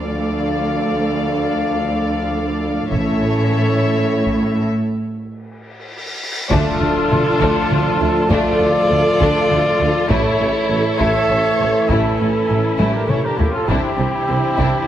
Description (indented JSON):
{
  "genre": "cinematic, epic orchestral film score",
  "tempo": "67 BPM (dotted quarters)",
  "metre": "6/8",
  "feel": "straight",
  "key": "D minor",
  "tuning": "A4 = 441 Hz",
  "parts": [
    { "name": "rich symphonic violin section", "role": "melody", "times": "0.0-14.9 s", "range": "Bb3 to F5", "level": "-25 LUFS", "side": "left 4 dB", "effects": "none" },
    { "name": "warm symphonic violin section", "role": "second line", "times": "0.0-14.9 s", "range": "G3 to D5", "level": "-25 LUFS", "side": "left 2 dB", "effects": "none" },
    { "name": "warm symphonic viola section", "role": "accompaniment", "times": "0.0-14.9 s", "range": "E4 to C#5", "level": "-24 LUFS", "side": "equal", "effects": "none" },
    { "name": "mellow French horn section", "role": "sustained chords", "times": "0.0-14.9 s", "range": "E3 to A4", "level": "-25 LUFS", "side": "left 1 dB", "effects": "none" },
    { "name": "warm symphonic cello section", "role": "bass", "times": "0.0-14.7 s", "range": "D2 to C3", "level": "-23 LUFS", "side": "right 2 dB", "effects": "none" },
    { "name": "warm studio double bass section", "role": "bass", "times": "2.9-3.5, 6.5-14.7 s", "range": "A1 to D2", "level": "-25 LUFS", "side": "right 2 dB", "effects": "none" },
    { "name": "taiko ensemble", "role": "drums", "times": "2.9-14.9 s", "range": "none", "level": "-23 LUFS", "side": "left 1 dB", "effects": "none" },
    { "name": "cymbal swell and impact", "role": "sound effects", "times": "5.7-8.3 s", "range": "none", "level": "-28 LUFS", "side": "left 1 dB", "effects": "none" },
    { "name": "clear trombone section", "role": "sustained chords", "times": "6.5-14.9 s", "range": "A2 to F3", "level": "-25 LUFS", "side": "right 2 dB", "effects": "none" },
    { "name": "clear trumpet section", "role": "stabs", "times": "6.5-14.9 s", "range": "G4 to E5", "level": "-20 LUFS", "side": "right 1 dB", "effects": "none" },
    { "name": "mellow tuba", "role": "bass", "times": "6.5-14.7 s", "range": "A1 to D2", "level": "-26 LUFS", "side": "right 2 dB", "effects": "none" }
  ],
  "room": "wet scoring stage reverb, RT60 1.6 s",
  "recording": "heavily compressed radio sound",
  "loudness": "-15 LUFS",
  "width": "side -11 dB against mid",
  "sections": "0.0-6.5 A section; 6.5-14.9 B section",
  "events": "break 4.7-6.5; cymbal swell 5.7-6.5; impact 6.5-8.3; drum fill 12.8-13.7",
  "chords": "0.0 Dm; 2.9 A; 6.5 Dm; 10.1 A; 13.7 Cadd9"
}